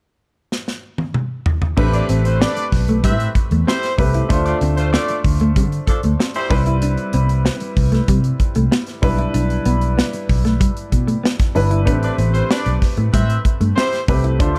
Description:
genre	polished 1980s jazz-funk pop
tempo	95 BPM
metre	4/4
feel	straight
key	A minor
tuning	A4 = 439 Hz
part	modern studio drum kit	drums	0.5-14.6 s	crash cymbal, hi-hat, kick drum, snare drum, toms	-22 LUFS	equal	none
part	warm grand piano	accompaniment	1.8-14.6 s	G3 to C5	-26 LUFS	equal	lush chorus
part	mellow electric guitar	riff	1.8-14.5 s	G3 to E4	-25 LUFS	equal	lush chorus
part	vintage muted fingered electric bass	bass	1.8-14.6 s	G1 to D3	-20 LUFS	equal	none
part	clear horn section	second line	1.9-6.6, 12.0-14.6 s	F3 to E5	-26 LUFS	equal	none
room	studio reverb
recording	dark, warm production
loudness	-18 LUFS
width	mono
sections	0.0-1.8 A section; 1.8-14.6 B section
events	drum fill 0.5-1.8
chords	0.0 N.C.; 1.8 Am9; 4.3 Dm7; 6.5 Cmaj7; 9.0 Em7/B; 11.9 Am9

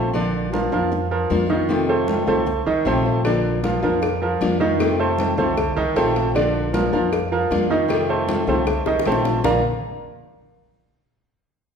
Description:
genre	latin, Cuban son and guajira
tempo	155 BPM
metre	4/4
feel	straight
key	Bb major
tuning	A4 = 445 Hz
part	nylon-string guitar	accompaniment	0.0-9.6 s	Bb2 to F4	-23 LUFS	left 3 dB	none
part	clear baby grand piano	arpeggios	0.0-9.6 s	D3 to Bb5	-21 LUFS	right 3 dB	none
part	upright bass	bass	0.0-9.6 s	Bb1 to F2	-27 LUFS	left 1 dB	none
part	congas	percussion	0.1-9.5 s	none	-30 LUFS	equal	none
part	cowbell and bongos	percussion	3.2-9.5 s	none	-28 LUFS	left 6 dB	none
room	wet recital hall reverb, RT60 1.4 s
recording	recorded in a church or concert hall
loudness	-18 LUFS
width	side -6 dB against mid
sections	0.0-9.4 A section; 9.4-11.0 B section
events	drum fill 8.9-9.4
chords	0.1 Bb; 1.7 F7; 3.2 Bb; 4.8 F7; 6.3 Bb; 7.9 F7; 9.4 Bb

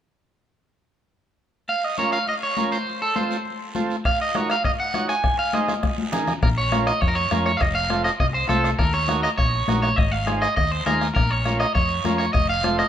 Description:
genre	latin, cumbia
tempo	202 BPM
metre	4/4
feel	straight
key	Bb minor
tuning	A4 = 439 Hz
part	electric guitar at the edge of break-up	melody	1.7-12.9 s	A4 to Ab5	-23 LUFS	right 1 dB	spring reverb
part	congas	percussion	1.7-12.8 s	none	-29 LUFS	left 4 dB	none
part	guiro	percussion	1.7-12.9 s	none	-37 LUFS	right 3 dB	none
part	overdriven combo organ	accompaniment	2.0-12.9 s	C4 to Db5	-28 LUFS	right 3 dB	none
part	bombo	percussion	4.1-12.9 s	none	-25 LUFS	left 1 dB	none
part	hollow-body short-scale fingered electric bass	bass	6.4-12.8 s	F1 to F2	-25 LUFS	equal	none
room	light reverb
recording	minimal, uncompressed stereo recording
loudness	-19 LUFS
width	side -10 dB against mid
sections	1.7-6.4 A section; 6.4-12.9 B section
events	drum fill 5.7-6.4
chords	1.7 Bbm; 2.9 F; 4.1 Ebm; 5.2 Ab; 6.4 Bbm; 7.6 F; 8.8 Ebm; 10.0 Ab; 11.2 Bbm; 12.3 F

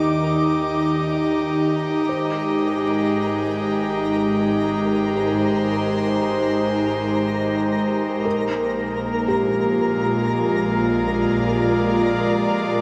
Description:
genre	ambient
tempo	free time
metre	none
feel	none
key	Ab lydian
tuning	A4 = 440 Hz
part	airy breathy pad	sustained chords	0.0-12.8 s	Eb3 to D6	-22 LUFS	equal	chorus, shimmer reverb
part	felt-muted upright piano	arpeggios	0.0-12.8 s	G4 to Eb5	-30 LUFS	equal	tape echo, shimmer reverb
part	warm chamber double bass section	bass	0.0-12.8 s	Ab1 to Eb2	-33 LUFS	equal	tube saturation
part	twinkling granular texture	texture	0.0-12.8 s	Bb4 to Bb5	-32 LUFS	equal	built-in reverb, shimmer reverb
room	wet huge ambient reverb, RT60 7.8 s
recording	in a vast, echoing space, cassette tape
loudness	-21 LUFS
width	mono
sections	0.0-12.8 A section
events	fade-in on felt piano 0.0-12.8; fade-in on double bass section 0.0-12.8; fade-in on synth texture 0.0-12.8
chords	0.0 Ebmaj7; 2.1 Abmaj7; 8.3 Bb7

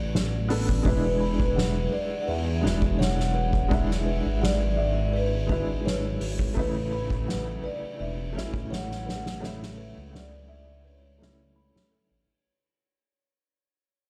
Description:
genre	trip hop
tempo	84 BPM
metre	4/4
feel	straight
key	unclear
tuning	A4 = 440 Hz
part	vibraphone with medium mallets	melody	0.0-11.9 s	B4 to F#5	-35 LUFS	equal	tape echo
part	felt-muted upright piano	accompaniment	0.0-12.3 s	C#3 to A4	-34 LUFS	equal	tremolo, tape echo
part	dark detuned saw bass	bass	0.0-12.3 s	E1 to E2	-31 LUFS	equal	none
part	soft-mallet drum kit	drums	0.1-12.3 s	hi-hat, kick drum, ride cymbal, snare drum	-32 LUFS	equal	none
part	music box	arpeggios	0.9-12.3 s	F#4 to B5	-42 LUFS	equal	tape echo
room	light reverb, studio reverb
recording	played on a big sound system in a bare room, large studio reverb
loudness	-27 LUFS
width	mono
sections	0.0-12.3 A section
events	fade-out 4.7-12.3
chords	0.0 Bm; 0.9 E7; 6.6 A

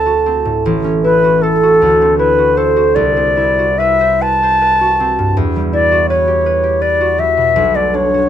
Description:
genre	classical, impressionist duo for flute and harp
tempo	46-55 BPM (dotted quarters)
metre	6/8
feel	rubato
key	E minor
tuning	A4 = 437 Hz
part	concert flute	melody	0.0-8.3 s	A4 to A5	-12 LUFS	left 2 dB	none
part	concert harp	accompaniment	0.0-8.3 s	A1 to C5	-15 LUFS	right 2 dB	none
room	light reverb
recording	dark, warm production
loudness	-10 LUFS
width	side -10 dB against mid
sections	0.0-8.3 A section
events	none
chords	0.0 D9; 0.6 A6; 1.8 D9; 3.0 Cmaj7#11; 5.4 Emadd9; 7.6 Bm7

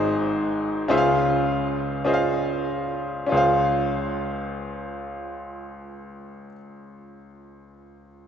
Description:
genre	gospel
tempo	45-56 BPM (dotted quarters)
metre	6/8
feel	straight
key	Db major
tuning	A4 = 441 Hz
part	bright upright piano	solo	0.0-8.3 s	Ab1 to F5	-22 LUFS	equal	none
room	wet church reverb, RT60 2.9 s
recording	recorded in a church or concert hall, nothing above 8.0 kHz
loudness	-21 LUFS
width	side -8 dB against mid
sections	0.0-3.3 A section; 3.3-8.3 B section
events	slowing down 0.0-3.3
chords	0.0 Ab; 0.9 Dbmaj7

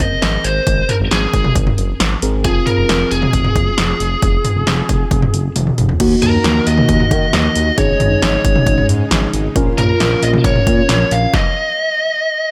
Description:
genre	synth-pop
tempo	135 BPM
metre	4/4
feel	straight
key	Bb minor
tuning	A4 = 440 Hz
part	biting lead guitar	melody	0.0-12.5 s	Ab4 to F5	-21 LUFS	equal	overdrive, delay
part	muted felt-like synth keys	accompaniment	0.0-11.3 s	Bb3 to Bb4	-24 LUFS	equal	chorus
part	smooth gliding synth bass	bass	0.0-11.3 s	F1 to Eb3	-21 LUFS	equal	none
part	punchy analog drum machine	drums	0.0-11.4 s	crash cymbal, hi-hat, kick drum, snare drum, toms	-18 LUFS	equal	none
part	ensemble organ-string	sustained chords	6.0-11.3 s	Db3 to Gb4	-25 LUFS	equal	ensemble chorus
room	light reverb, digital ambience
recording	none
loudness	-15 LUFS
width	mono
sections	0.0-6.0 A section; 6.0-12.5 B section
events	drum fill 5.6-6.0; stop 11.3-12.5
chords	0.0 Abadd9; 2.4 Fm; 6.0 Ebm; 7.8 Absus4; 9.6 Bbm; 11.3 N.C.

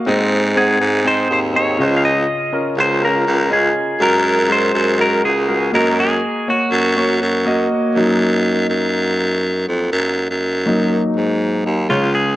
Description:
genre	piano-driven pop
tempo	122 BPM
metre	4/4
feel	straight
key	unclear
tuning	A4 = 440 Hz
part	warm grand piano	accompaniment	0.0-12.4 s	Ab2 to Gb5	-19 LUFS	equal	cassette tape
part	growling baritone saxophone	bass	0.1-12.4 s	Db2 to Ab2	-17 LUFS	equal	none
part	clean electric guitar	melody	0.6-7.7, 11.9-12.4 s	F4 to F5	-18 LUFS	equal	cassette tape
room	light reverb, studio reverb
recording	home recording on cassette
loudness	-14 LUFS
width	side -15 dB against mid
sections	0.0-8.0 A section; 8.0-11.9 B section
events	grand piano solo 8.0-11.9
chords	0.1 Ab; 1.8 Dbadd9; 4.0 Gbadd9; 5.7 Ebm/Gb; 8.0 Ebm

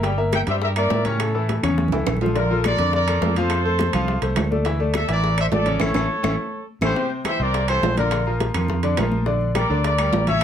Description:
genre	latin, salsa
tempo	208 BPM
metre	4/4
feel	straight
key	unclear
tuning	A4 = 439 Hz
part	clear concert grand piano	accompaniment	0.0-10.4 s	C3 to G5	-24 LUFS	left 3 dB	none
part	fingered electric bass	bass	0.0-10.4 s	G1 to A2	-23 LUFS	right 1 dB	none
part	bongos	percussion	0.0-10.3 s	none	-31 LUFS	left 6 dB	none
part	congas	percussion	0.0-10.4 s	none	-29 LUFS	equal	none
part	timbales	percussion	0.0-10.4 s	none	-28 LUFS	right 7 dB	none
part	mellow trumpet section	melody	0.3-10.4 s	E4 to G5	-23 LUFS	equal	none
part	claves	percussion	0.3-10.1 s	none	-33 LUFS	left 3 dB	none
room	light reverb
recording	none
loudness	-18 LUFS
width	side -9 dB against mid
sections	0.0-7.0 A section; 7.0-10.4 B section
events	drum fill 1.5-2.4, 5.8-7.0; band accent 5.8-7.0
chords	0.0 Edim/G; 1.2 A; 2.4 Bbmaj7; 3.5 F; 4.7 Dsus2; 5.8 A; 7.0 C; 8.1 Bb; 9.3 Gm/Bb

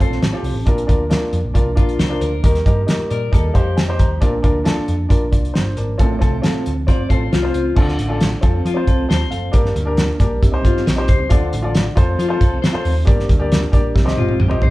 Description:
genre	uptempo 1960s-style soul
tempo	136 BPM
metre	4/4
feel	straight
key	Bb major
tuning	A4 = 440 Hz
part	warm upright piano	accompaniment	0.0-14.7 s	G2 to Bb5	-22 LUFS	left 1 dB	none
part	mellow tonewheel organ	sustained chords	0.0-14.7 s	F3 to Eb4	-28 LUFS	right 2 dB	slow rotary speaker, chorus vibrato
part	electric guitar at the edge of break-up	riff	0.0-4.2, 6.9-14.7 s	F4 to D5	-25 LUFS	left 6 dB	none
part	cloth-damped thuddy drum kit	drums	0.0-14.7 s	crash cymbal, hi-hat, kick drum, snare drum, toms	-16 LUFS	equal	none
part	hollow-body short-scale picked electric bass	bass	0.1-14.7 s	Gb1 to F3	-21 LUFS	equal	none
room	moderate large studio reverb, RT60 1.3 s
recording	band playing live in one room, cassette tape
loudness	-14 LUFS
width	side -18 dB against mid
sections	0.0-7.8 A section; 7.8-14.7 B section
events	upright piano fill 2.9-4.2; drum fill 14.0-14.7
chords	0.0 F; 0.7 Bb; 2.4 Eb; 4.2 Bb; 6.0 F/A; 7.8 Dm; 8.4 F; 9.5 Gm; 10.4 Cm; 11.3 Dm; 12.0 F; 13.1 Gm; 14.0 Cm

